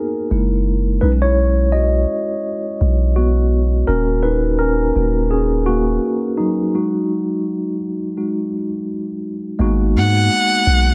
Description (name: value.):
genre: contemporary R&B.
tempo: 84 BPM.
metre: 4/4.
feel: swing 58% on 16ths.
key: unclear.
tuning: A4 = 440 Hz.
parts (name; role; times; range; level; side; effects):
mellow tine electric piano; accompaniment; 0.0-10.9 s; F#3 to D#5; -21 LUFS; equal; none.
long sustained 808-style bass; bass; 0.3-10.9 s; D#1 to G#2; -19 LUFS; equal; none.
clear erhu; melody; 10.0-10.9 s; F#5; -18 LUFS; equal; none.
room: light reverb, studio ambience.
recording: none.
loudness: -18 LUFS.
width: mono.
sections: 0.0-9.6 A section; 9.6-10.9 B section.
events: tine electric piano solo 0.0-9.6; stop 6.7-9.6.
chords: 0.3 F#7; 1.0 B69; 3.9 D#m7; 6.7 D#madd11/F#; 9.6 G#m7.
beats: 0.31 | 1.02 1.74 2.45 3.17 | 3.88 4.60 5.31 6.03 | 6.74 7.45 8.17 8.88 | 9.60 10.31.